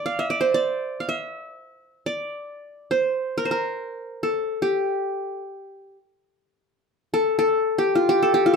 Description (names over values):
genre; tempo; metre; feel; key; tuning
Turkish makam ensemble; free time; none; none; D makam ussak; A4 = 440 Hz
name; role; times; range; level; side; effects
qanun; solo; 0.0-8.6 s; F4 to F5; -21 LUFS; equal; none
room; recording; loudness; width
moderate small room reverb, RT60 0.5 s; minimal, uncompressed stereo recording; -21 LUFS; side -5 dB against mid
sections
0.0-8.6 A section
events
slowing down 6.8-8.6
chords
none